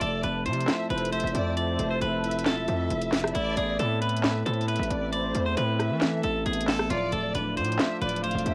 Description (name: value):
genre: hip hop, trap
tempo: 135 BPM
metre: 4/4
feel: half-time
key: A minor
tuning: A4 = 440 Hz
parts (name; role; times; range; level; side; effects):
- clean electric guitar; melody; 0.0-8.5 s; E4 to D5; -34 LUFS; equal; cassette tape, plate reverb
- warm symphonic violin section; second line; 0.0-8.5 s; C5 to F5; -36 LUFS; equal; cassette tape, plate reverb, analog delay
- mellow tine electric piano; accompaniment; 0.0-8.5 s; F3 to F5; -34 LUFS; equal; cassette tape
- deep dark ambient pad; sustained chords; 0.0-8.5 s; A4 to D6; -38 LUFS; equal; chorus, built-in reverb, cassette tape, plate reverb
- distorted 808-style bass; bass; 0.0-8.5 s; D1 to E3; -33 LUFS; equal; distortion
- trap drum kit; drums; 0.0-8.5 s; handclaps, hi-hat, rim click, snare drum; -32 LUFS; equal; cassette tape
room: light reverb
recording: home recording on cassette, vinyl crackle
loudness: -27 LUFS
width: mono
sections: 0.0-8.5 A section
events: none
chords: 0.0 Fmaj7; 3.3 Amadd9; 6.9 Dm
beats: 0.24 0.68 1.13 | 1.57 2.02 2.46 2.90 | 3.35 3.79 4.24 4.68 | 5.13 5.57 6.01 6.46 | 6.90 7.35 7.79 8.24